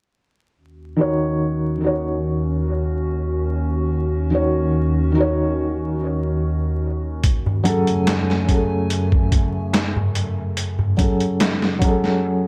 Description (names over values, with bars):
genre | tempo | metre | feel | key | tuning
trip hop | 72 BPM | 4/4 | straight | unclear | A4 = 441 Hz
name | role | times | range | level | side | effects
warbly tape-like pad | sustained chords | 1.0-12.2 s | Eb2 to Ab5 | -25 LUFS | equal | chorus, built-in reverb, phaser
felt-muted upright piano | accompaniment | 1.0-12.5 s | Eb3 to Db5 | -24 LUFS | equal | tremolo, low-pass filter, tape echo
trip hop sampler-style drum kit | drums | 7.2-12.2 s | hi-hat, kick drum, snare drum | -22 LUFS | equal | none
darbuka | percussion | 7.5-11.6 s | none | -28 LUFS | equal | dub echo
room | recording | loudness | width
light reverb | echo-heavy mix, vinyl crackle | -20 LUFS | mono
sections
0.6-12.5 A section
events
break 12.2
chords
0.6 Ebm7; 7.2 Gbmadd9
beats
| 0.57 1.40 2.24 3.07 | 3.90 4.74 5.57 6.40 | 7.24 8.07 8.90 9.74 | 10.57 11.40 12.24